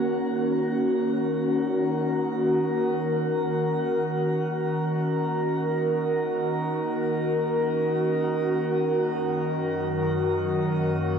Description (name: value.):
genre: ambient.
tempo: free time.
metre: none.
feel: none.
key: Gb major.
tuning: A4 = 440 Hz.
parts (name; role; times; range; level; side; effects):
warbly tape-like pad; solo; 0.0-11.2 s; Gb2 to Bb4; -23 LUFS; equal; chorus, built-in reverb, phaser, tape echo.
room: wet shimmer reverb, RT60 7.8 s.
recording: worn, warbling old tape, cassette tape, warbly pitch drift.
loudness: -23 LUFS.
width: side -7 dB against mid.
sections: 0.0-11.2 A section.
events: none.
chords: 0.0 Gb6; 9.1 Ebm/Gb.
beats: free time.